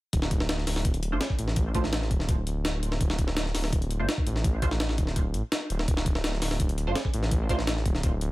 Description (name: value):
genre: drum and bass, jungle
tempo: 167 BPM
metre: 4/4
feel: straight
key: D minor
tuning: A4 = 440 Hz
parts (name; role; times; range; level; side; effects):
- detuned saw bass; bass; 0.1-8.3 s; D1 to A1; -29 LUFS; equal; tube saturation
- breakbeat sampler-style drum kit; drums; 0.1-8.3 s; hi-hat, kick drum, snare drum; -27 LUFS; equal; studio reverb
- filtered dub chord stab; stabs; 1.1-7.6 s; A3 to C5; -35 LUFS; right 2 dB; phaser, ensemble chorus, cassette tape, dub echo
room: digital ambience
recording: none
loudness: -25 LUFS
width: side -19 dB against mid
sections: 0.1-8.3 A section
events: none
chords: 0.1 D5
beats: | 0.13 0.49 0.85 1.21 | 1.57 1.93 2.29 2.65 | 3.01 3.37 3.73 4.08 | 4.44 4.80 5.16 5.52 | 5.88 6.24 6.60 6.96 | 7.32 7.68 8.04